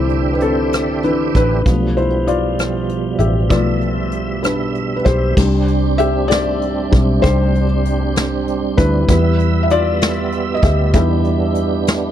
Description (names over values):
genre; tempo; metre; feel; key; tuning
six-eight pop ballad; 65 BPM (dotted quarters); 6/8; straight; C major; A4 = 441 Hz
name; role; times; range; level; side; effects
felt-muted upright piano; accompaniment; 0.0-12.1 s; E3 to E5; -18 LUFS; left 3 dB; none
tonewheel organ; sustained chords; 0.0-12.1 s; B2 to E5; -21 LUFS; right 5 dB; chorus vibrato, slow rotary speaker
vintage muted fingered electric bass; bass; 0.0-12.1 s; A1 to E2; -19 LUFS; equal; none
vintage brush drum kit; drums; 0.1-12.0 s; crash cymbal, hi-hat, kick drum, rim click, snare drum; -16 LUFS; equal; none
room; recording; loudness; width
small room ambience; dry, close 1970s-style studio recording; -14 LUFS; side -10 dB against mid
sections
0.0-5.4 A section; 5.4-12.1 B section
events
felt piano solo 0.0-5.4, 5.4-12.1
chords
0.0 Cadd9; 5.4 Csus2; 9.1 Em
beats
0.72 | 1.65 2.58 | 3.50 4.44 | 5.38 6.31 | 7.24 8.16 | 9.09 10.01 | 10.94 11.88